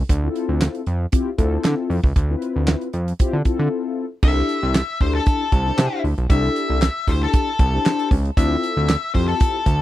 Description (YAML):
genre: early-eighties boogie funk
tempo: 116 BPM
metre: 4/4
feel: straight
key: unclear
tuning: A4 = 440 Hz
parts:
  - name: fat analog bass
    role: bass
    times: 0.0-9.8 s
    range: B1 to D3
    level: -20 LUFS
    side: right 1 dB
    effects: none
  - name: damped 70s drum kit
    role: drums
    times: 0.1-9.8 s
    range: crash cymbal, handclaps, hi-hat, kick drum, snare drum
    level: -18 LUFS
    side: right 1 dB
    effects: none
  - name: mellow synth brass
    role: accompaniment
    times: 0.2-9.8 s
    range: C4 to C5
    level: -24 LUFS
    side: left 4 dB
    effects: chorus
  - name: octave-fuzz lead guitar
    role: melody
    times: 4.2-9.8 s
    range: A4 to E5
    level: -24 LUFS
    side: left 3 dB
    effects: distortion
room: little or no reverb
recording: dry, close 1970s-style studio recording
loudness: -17 LUFS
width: side -14 dB against mid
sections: 0.0-4.2 A section; 4.2-9.8 B section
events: break 3.7-4.2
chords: 0.1 Dm9; 4.2 C69; 8.4 Dm9